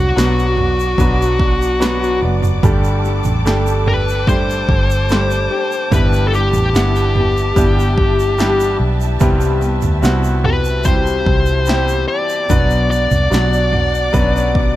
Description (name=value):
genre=pop ballad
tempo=73 BPM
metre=4/4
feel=straight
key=unclear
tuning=A4 = 440 Hz
part: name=fuzz lead guitar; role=melody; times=0.0-14.8 s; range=F#4 to D5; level=-18 LUFS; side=left 2 dB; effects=distortion
part: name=clear baby grand piano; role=accompaniment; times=0.0-14.8 s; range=G2 to F#5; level=-21 LUFS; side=right 1 dB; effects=none
part: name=warm studio string section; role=sustained chords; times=0.0-14.8 s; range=A4 to D6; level=-28 LUFS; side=right 1 dB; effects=none
part: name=nylon-string guitar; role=arpeggios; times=0.0-14.8 s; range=G2 to G4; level=-24 LUFS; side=left 4 dB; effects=none
part: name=vintage muted fingered electric bass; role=bass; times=0.0-14.8 s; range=F#1 to D2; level=-17 LUFS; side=equal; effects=none
part: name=deep house drum kit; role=drums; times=0.2-14.7 s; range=kick drum, snare drum, toms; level=-18 LUFS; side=right 1 dB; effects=overdrive
part: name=egg shaker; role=percussion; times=0.2-14.5 s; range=none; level=-36 LUFS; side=right 11 dB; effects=none
room=light reverb, studio reverb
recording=dark, warm production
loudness=-13 LUFS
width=side -14 dB against mid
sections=0.0-14.8 A section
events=grand piano fill 1.4-2.6, 14.1-14.8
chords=0.0 Bm; 2.6 Gsus2; 5.9 Em7/G; 9.2 Cmaj7; 12.5 Bm